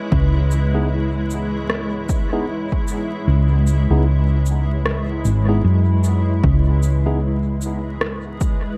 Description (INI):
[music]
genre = ambient dub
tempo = 76 BPM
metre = 4/4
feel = swing 59% on 16ths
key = C# minor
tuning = A4 = 438 Hz
[part]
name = granular cloud pad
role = sustained chords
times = 0.0-8.8 s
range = G#3 to C#5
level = -27 LUFS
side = equal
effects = built-in reverb
[part]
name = hollow-body short-scale fingered electric bass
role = bass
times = 0.1-8.8 s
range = G#1 to F#2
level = -20 LUFS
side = equal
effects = none
[part]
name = electronic kick drum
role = drums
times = 0.1-8.6 s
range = none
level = -22 LUFS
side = equal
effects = overdrive
[part]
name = electronic shaker and rim click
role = drums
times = 0.5-8.6 s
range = none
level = -29 LUFS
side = equal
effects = overdrive, dub echo
[part]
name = tine electric piano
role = stabs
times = 0.7-7.2 s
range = B3 to G#4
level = -30 LUFS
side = equal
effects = dub echo
[sound]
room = digital ambience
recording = dark, warm production, vinyl crackle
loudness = -19 LUFS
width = mono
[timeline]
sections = 0.0-6.4 A section; 6.4-8.8 B section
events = kick drops out 3.3-6.4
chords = 0.0 C#m7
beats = | 0.12 0.91 1.70 2.48 | 3.27 4.06 4.85 5.64 | 6.43 7.22 8.01